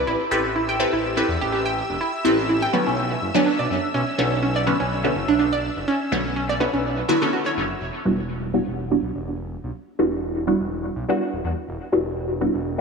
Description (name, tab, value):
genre	deep house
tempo	124 BPM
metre	4/4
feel	swing 55% on 16ths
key	E minor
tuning	A4 = 440 Hz
part	analog pluck	arpeggios	0.0-7.6 s	C#4 to G5	-24 LUFS	right 3 dB	chorus, diffuse ambient delay
part	filtered dub chord stab	stabs	0.0-12.8 s	D3 to B4	-23 LUFS	equal	phaser, diffuse ambient delay
part	smooth synth bass	bass	0.0-12.8 s	E1 to E2	-29 LUFS	equal	tube saturation
part	analog string pad	texture	0.0-7.8 s	E5 to E6	-31 LUFS	left 2 dB	ensemble chorus
room	wet lush hall reverb, RT60 2.0 s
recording	dreamy mix soaked in reverb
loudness	-20 LUFS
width	side -5 dB against mid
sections	0.0-7.8 A section; 7.8-12.8 B section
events	drop 0.0-7.8; filter sweep on synth stab 7.8-12.8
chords	0.0 Am9; 2.7 Bm9; 7.8 Em9